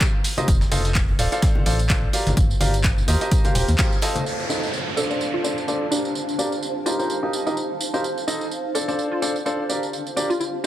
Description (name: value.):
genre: piano house.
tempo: 127 BPM.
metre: 4/4.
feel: swing 56% on 16ths.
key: G minor.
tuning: A4 = 440 Hz.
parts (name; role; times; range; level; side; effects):
breakbeat sampler-style drum kit; drums; 0.0-4.2 s; hi-hat, snare drum; -35 LUFS; equal; none.
electronic kick drum; drums; 0.0-3.9 s; none; -20 LUFS; equal; none.
punchy analog drum machine; drums; 0.0-10.7 s; handclaps, hi-hat, tambourine; -28 LUFS; right 2 dB; none.
tambourine and congas; percussion; 0.0-4.2 s; none; -32 LUFS; left 4 dB; none.
bright grand piano; riff; 0.4-10.7 s; D4 to A5; -25 LUFS; equal; sidechain pumping, low-pass filter, tape echo.
organ-like FM bass; bass; 0.5-3.8 s; D1 to Eb2; -22 LUFS; equal; sidechain pumping.
granular cloud pad; texture; 2.3-10.7 s; Eb4 to A5; -30 LUFS; right 1 dB; built-in reverb, sidechain pumping.
downlifter; sound effects; 4.3-8.0 s; none; -30 LUFS; right 1 dB; none.
hollow square pluck; melody; 5.0-10.7 s; D4 to A4; -28 LUFS; equal; ensemble chorus, tape echo.
room: light reverb.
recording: none.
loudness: -19 LUFS.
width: side -13 dB against mid.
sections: 0.0-4.3 A section; 4.3-10.7 B section.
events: band accent 3.8; filter sweep on grand piano 4.3-10.7.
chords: 0.5 F7; 1.2 Dm7; 2.1 Gm7; 3.1 Eb69; 4.3 F7; 5.0 Dm7; 5.9 Gm7; 6.9 Eb69; 8.0 F7; 8.7 Dm7; 9.7 Gm7.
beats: 0.01 | 0.48 0.95 1.42 1.90 | 2.37 2.84 3.31 3.79 | 4.26 4.73 5.20 5.68 | 6.15 6.62 7.09 7.57 | 8.04 8.51 8.98 9.46 | 9.93 10.40.